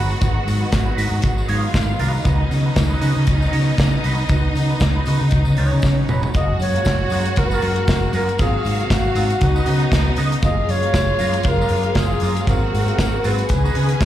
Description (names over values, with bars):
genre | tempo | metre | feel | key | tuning
disco | 118 BPM | 4/4 | swing 56% on 16ths | F# major | A4 = 440 Hz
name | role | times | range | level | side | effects
rich studio string section | second line | 0.0-14.1 s | C#4 to G#5 | -26 LUFS | equal | slapback echo
clean electric guitar | accompaniment | 0.0-14.0 s | F#3 to C#5 | -30 LUFS | right 5 dB | wah, slapback echo
bright studio string section | sustained chords | 0.0-14.1 s | B#2 to E#5 | -28 LUFS | equal | none
fingered electric bass | bass | 0.0-14.1 s | E1 to C#3 | -19 LUFS | equal | none
tambourine | percussion | 0.1-14.1 s | none | -40 LUFS | left 4 dB | none
modern studio drum kit | drums | 0.2-14.1 s | hi-hat, kick drum, snare drum, toms | -21 LUFS | equal | none
reedy alto flute | melody | 6.3-14.0 s | F#4 to D#5 | -23 LUFS | equal | slapback echo
room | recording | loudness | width
small room reverb | live gig heard through the venue's PA, club reverb | -16 LUFS | side -12 dB against mid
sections
0.0-6.3 A section; 6.3-14.1 B section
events
drum fill 5.8-6.3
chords
0.0 G#m7; 2.3 C#9sus4; 6.3 F#maj9; 8.4 G#13; 9.4 C#9sus4; 10.4 F#maj9; 12.5 G#13; 13.5 C#9sus4